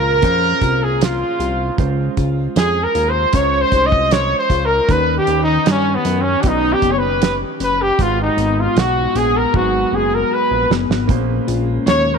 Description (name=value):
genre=indie pop, bedroom pop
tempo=77 BPM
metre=4/4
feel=straight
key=Db major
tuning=A4 = 440 Hz
part: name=bright trumpet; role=melody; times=0.0-12.2 s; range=B3 to Eb5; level=-17 LUFS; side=equal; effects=lush chorus, tape echo
part: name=clear upright piano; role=accompaniment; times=0.0-12.2 s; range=G3 to C5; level=-26 LUFS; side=right 14 dB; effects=cassette tape
part: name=semi-hollow electric guitar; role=accompaniment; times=0.0-12.2 s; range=Ab2 to C5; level=-24 LUFS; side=left 13 dB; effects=wide subtle chorus, vibrato effect
part: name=fat analog bass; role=bass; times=0.0-12.2 s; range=F#1 to G2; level=-21 LUFS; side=equal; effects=transformer saturation
part: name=damped 70s drum kit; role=drums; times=0.2-12.1 s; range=hi-hat, kick drum, snare drum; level=-19 LUFS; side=right 3 dB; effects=none
part: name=warbly tape-like pad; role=sustained chords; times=11.5-12.2 s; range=Ab3 to Db4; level=-24 LUFS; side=left 2 dB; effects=chorus, built-in reverb
room=light reverb, small room ambience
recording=1960s-style stereo with parts hard left and right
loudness=-14 LUFS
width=side -6 dB against mid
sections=0.0-12.2 A section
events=trumpet solo 0.0-12.2; drum fill 9.5-11.1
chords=0.0 Bbm9; 1.8 Dbmaj7; 4.9 Eb7alt; 8.0 Abm7; 11.1 Bbm9